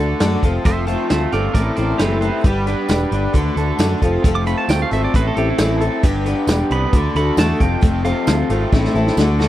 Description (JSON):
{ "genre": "folk rock and heartland rock", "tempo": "134 BPM", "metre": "4/4", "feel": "straight", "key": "unclear", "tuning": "A4 = 440 Hz", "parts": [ { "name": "picked twelve-string acoustic guitar", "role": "accompaniment", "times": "0.0-9.5 s", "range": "A2 to B4", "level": "-22 LUFS", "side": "left 4 dB", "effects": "none" }, { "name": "hand-pumped harmonium", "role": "sustained chords", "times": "0.0-9.5 s", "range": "A3 to B4", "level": "-30 LUFS", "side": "equal", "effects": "none" }, { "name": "raw garage guitar", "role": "riff", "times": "0.0-9.5 s", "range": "F2 to C5", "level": "-23 LUFS", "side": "right 1 dB", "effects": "overdrive" }, { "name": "picked electric bass", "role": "bass", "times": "0.0-9.5 s", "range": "E1 to F#2", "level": "-20 LUFS", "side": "equal", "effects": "none" }, { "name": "vintage drum kit", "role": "drums", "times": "0.2-9.5 s", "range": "hi-hat, kick drum, snare drum", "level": "-18 LUFS", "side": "equal", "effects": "none" }, { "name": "pedal steel guitar", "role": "second line", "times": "0.7-8.7 s", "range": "E4 to D6", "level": "-25 LUFS", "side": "right 5 dB", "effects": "none" }, { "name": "tambourine", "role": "percussion", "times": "2.9-9.3 s", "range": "none", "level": "-36 LUFS", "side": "right 10 dB", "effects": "none" } ], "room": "little or no reverb", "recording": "dry, close 1970s-style studio recording", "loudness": "-15 LUFS", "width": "side -13 dB against mid", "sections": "0.0-9.5 A section", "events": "pedal steel guitar solo 0.0-9.5; drum fill 8.7-9.5", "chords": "0.4 F; 1.5 Am; 2.4 G; 3.3 D; 4.0 F; 5.1 Am; 6.0 G; 6.9 D; 7.6 F; 8.7 Am" }